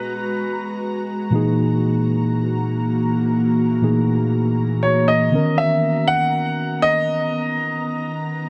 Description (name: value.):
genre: R&B.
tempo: 60 BPM.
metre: 4/4.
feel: straight.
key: unclear.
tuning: A4 = 440 Hz.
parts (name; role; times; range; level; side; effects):
warm concert grand piano; melody; 0.0-8.5 s; B4 to F#5; -22 LUFS; equal; tape echo.
mellow tine electric piano; accompaniment; 0.0-8.5 s; A#2 to B4; -23 LUFS; equal; none.
ethereal airy pad; sustained chords; 0.0-8.5 s; D#3 to A#5; -26 LUFS; equal; ensemble chorus, built-in reverb.
room: moderate plate reverb, RT60 2.6 s.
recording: none.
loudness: -20 LUFS.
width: mono.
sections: 0.0-8.5 A section.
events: none.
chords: 0.0 G#m9; 1.3 F#13/A#; 5.3 Bmaj9.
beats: 0.33 | 1.33 2.33 3.33 4.33 | 5.33 6.33 7.33 8.33.